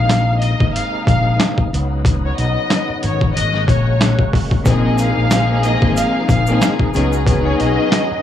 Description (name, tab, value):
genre	hip hop, boom-bap hip-hop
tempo	92 BPM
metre	4/4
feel	swing 56% on 16ths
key	Bb minor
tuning	A4 = 438 Hz
part	warm studio violin section	melody	0.0-8.2 s	Db5 to F5	-21 LUFS	left 1 dB	high-pass filter, low-pass filter, plate reverb, digital delay
part	overdriven tonewheel organ	sustained chords	0.0-8.2 s	C3 to Gb4	-24 LUFS	equal	chorus vibrato, slow rotary speaker, high-pass filter, low-pass filter, plate reverb
part	fretless electric bass	bass	0.0-8.1 s	Ab1 to Db2	-17 LUFS	left 1 dB	lush chorus
part	boom bap sampler-style drum kit	drums	0.1-8.1 s	hi-hat, kick drum, snare drum	-17 LUFS	equal	overdrive, vintage 12-bit sampler grit
part	warm studio string section	accompaniment	4.6-8.2 s	F3 to Ab4	-18 LUFS	left 3 dB	cassette tape, high-pass filter, low-pass filter, plate reverb
part	tube shaker	percussion	4.7-7.3 s	none	-33 LUFS	right 8 dB	none
room	light reverb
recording	small room ambience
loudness	-13 LUFS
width	side -10 dB against mid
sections	0.0-8.2 A section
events	break 0.0-4.7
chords	0.0 Bb9sus4; 1.7 Db9sus4; 3.4 Ab9sus4; 4.7 Bb9sus4; 6.9 Db9sus4